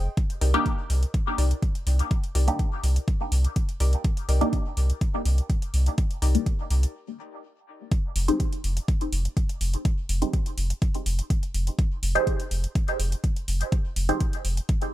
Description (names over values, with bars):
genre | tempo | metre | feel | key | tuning
dub techno | 124 BPM | 4/4 | straight | F dorian | A4 = 440 Hz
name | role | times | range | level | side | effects
filtered dub chord stab | riff | 0.0-6.4 s | Eb4 to D5 | -37 LUFS | left 4 dB | wide subtle chorus, sidechain pumping, dub echo
warm sub bass | bass | 0.0-14.6 s | F1 to C2 | -22 LUFS | equal | sidechain pumping
electronic hi-hat | drums | 0.2-14.9 s | none | -36 LUFS | equal | none
electronic kick drum | drums | 0.2-14.8 s | none | -24 LUFS | equal | none
filtered dub chord stab | stabs | 0.5-14.2 s | Bb3 to C5 | -27 LUFS | equal | phaser, dub echo
room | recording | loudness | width
digital ambience | echo-heavy mix | -23 LUFS | side -14 dB against mid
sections
0.0-7.9 A section; 7.9-14.9 A section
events
break 6.9-7.9; filter sweep on synth stab 7.9-14.9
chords
0.2 Cm7; 7.9 Fm7